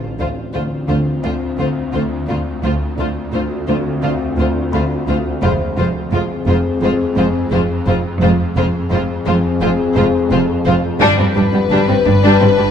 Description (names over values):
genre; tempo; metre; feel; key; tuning
cinematic; 86 BPM; 4/4; straight; D dorian; A4 = 440 Hz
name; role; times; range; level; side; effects
dark French horn section; sustained chords; 0.0-12.7 s; C4 to B4; -22 LUFS; left 5 dB; none
warm studio cello section; riff; 0.0-12.6 s; F2 to D4; -21 LUFS; right 2 dB; none
swarming drone; drone; 0.0-12.7 s; G1 to F2; -24 LUFS; equal; built-in reverb
warm studio violin section; melody; 0.2-12.7 s; B4 to C5; -23 LUFS; left 7 dB; none
warm studio violin section; second line; 0.2-12.6 s; B3 to F4; -22 LUFS; left 3 dB; none
warm studio viola section; accompaniment; 0.2-12.7 s; G3 to A3; -22 LUFS; right 1 dB; none
dark studio double bass section; bass; 0.2-12.5 s; F1 to D2; -23 LUFS; right 3 dB; none
warm studio cello section; bass; 0.2-12.7 s; D2 to G2; -22 LUFS; right 2 dB; none
music box; texture; 1.2-7.5 s; C5 to B5; -30 LUFS; left 1 dB; none
room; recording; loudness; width
moderate scoring stage reverb, RT60 1.6 s; dark, warm production; -14 LUFS; side -8 dB against mid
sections
0.0-12.7 A section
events
none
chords
0.0 Dm7; 5.4 Fm; 11.0 G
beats
0.54 1.24 1.94 | 2.64 3.33 4.03 4.73 | 5.43 6.12 6.82 7.52 | 8.22 8.92 9.61 10.31 | 11.01 11.71 12.40